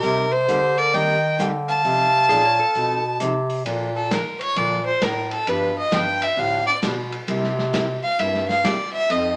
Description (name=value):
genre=country, western swing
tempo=132 BPM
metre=4/4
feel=swing 65% on 8ths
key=Bb major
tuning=A4 = 437 Hz
part: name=bright fiddle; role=melody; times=0.0-9.4 s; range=A4 to A5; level=-22 LUFS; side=equal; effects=none
part: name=mellow clarinet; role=second line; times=0.0-3.2 s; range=G4 to F5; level=-30 LUFS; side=equal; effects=none
part: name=picked steel-string acoustic guitar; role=accompaniment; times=0.0-9.3 s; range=C3 to A4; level=-31 LUFS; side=equal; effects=none
part: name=breathy bass clarinet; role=bass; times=0.0-9.4 s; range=F2 to Eb3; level=-28 LUFS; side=equal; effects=none
part: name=vintage drum kit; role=drums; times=0.0-9.2 s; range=hi-hat, ride cymbal, rim click, snare drum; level=-32 LUFS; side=equal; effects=none
part: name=clean lap steel guitar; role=second line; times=2.3-3.0 s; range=Ab4 to Db5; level=-30 LUFS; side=equal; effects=none
room=moderate studio reverb, RT60 0.7 s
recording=none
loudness=-21 LUFS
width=mono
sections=0.0-3.7 A section; 3.7-9.4 B section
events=fiddle solo 3.7-9.4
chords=0.0 Cm7; 1.8 F7; 3.7 Bbmaj7; 5.5 G7; 7.3 C7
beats=| 0.03 0.48 0.93 1.39 | 1.84 2.29 2.75 3.20 | 3.65 4.11 4.56 5.01 | 5.47 5.92 6.38 6.83 | 7.28 7.74 8.19 8.64 | 9.10